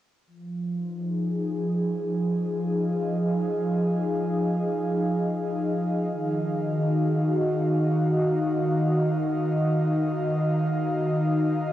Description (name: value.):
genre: ambient.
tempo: free time.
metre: none.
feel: none.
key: unclear.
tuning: A4 = 440 Hz.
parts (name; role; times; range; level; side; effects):
airy breathy pad; sustained chords; 0.3-11.7 s; Eb3 to F5; -23 LUFS; equal; chorus, cassette tape.
room: moderate spring reverb, RT60 2.0 s.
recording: home recording on cassette.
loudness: -23 LUFS.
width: side -13 dB against mid.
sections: 0.3-11.7 A section.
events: filter sweep on analog synth pad 0.3-11.7.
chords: 0.3 Fm7; 6.1 Ebmadd9.